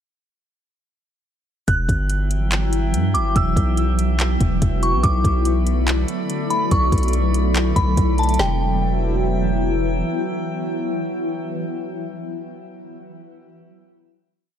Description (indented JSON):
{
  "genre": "hip hop, atmospheric cloud-rap",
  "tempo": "143 BPM",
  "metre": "4/4",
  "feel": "half-time",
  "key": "E minor",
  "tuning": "A4 = 443 Hz",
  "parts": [
    { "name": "glassy synth bell", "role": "melody", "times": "1.7-9.6 s", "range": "G5 to F#6", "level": "-26 LUFS", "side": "equal", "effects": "chorus, low-pass filter, tape echo" },
    { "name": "shimmering ambient pad", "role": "sustained chords", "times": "2.3-11.5 s", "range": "D3 to E4", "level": "-24 LUFS", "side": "left 1 dB", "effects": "chorus, built-in reverb, phaser, sidechain pumping" },
    { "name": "long sustained 808-style bass", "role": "bass", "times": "1.7-10.0 s", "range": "E1 to G2", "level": "-20 LUFS", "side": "equal", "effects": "none" },
    { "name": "smooth R&B drum kit", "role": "drums", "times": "1.7-8.5 s", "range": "handclaps, hi-hat, kick drum, snare drum", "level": "-21 LUFS", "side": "equal", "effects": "none" },
    { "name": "drifting glass-harmonics texture", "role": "texture", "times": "2.1-11.5 s", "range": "F#3 to B5", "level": "-32 LUFS", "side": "equal", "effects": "chorus, built-in reverb" }
  ],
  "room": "digital ambience",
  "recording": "none",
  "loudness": "-18 LUFS",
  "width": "side -9 dB against mid",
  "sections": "1.7-8.4 verse; 8.4-11.7 final chord",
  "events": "none",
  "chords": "1.7 Emadd9; 5.0 Bm7; 8.4 Emadd9",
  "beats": "| 1.68 2.10 2.52 2.94 | 3.36 3.78 4.20 4.62 | 5.04 5.45 5.87 6.29 | 6.71 7.13 7.55 7.97 | 8.39 8.81 9.23 9.65 | 10.07 10.49 10.91 11.33"
}